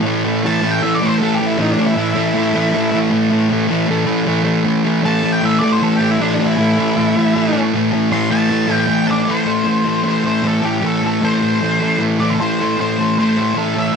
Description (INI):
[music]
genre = rock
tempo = 156 BPM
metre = 4/4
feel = straight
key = A minor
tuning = A4 = 440 Hz
[part]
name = fuzz guitar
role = riff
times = 0.0-14.0 s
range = A2 to A3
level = -15 LUFS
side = equal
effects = distortion
[part]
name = octave-fuzz lead guitar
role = melody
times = 0.5-14.0 s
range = D4 to C6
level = -20 LUFS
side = left 1 dB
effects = distortion
[sound]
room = moderate small room ambience, RT60 0.5 s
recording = none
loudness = -14 LUFS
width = side -6 dB against mid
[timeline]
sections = 0.0-9.3 A section; 9.3-14.0 B section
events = lead electric guitar solo 0.0-9.3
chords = 0.0 A5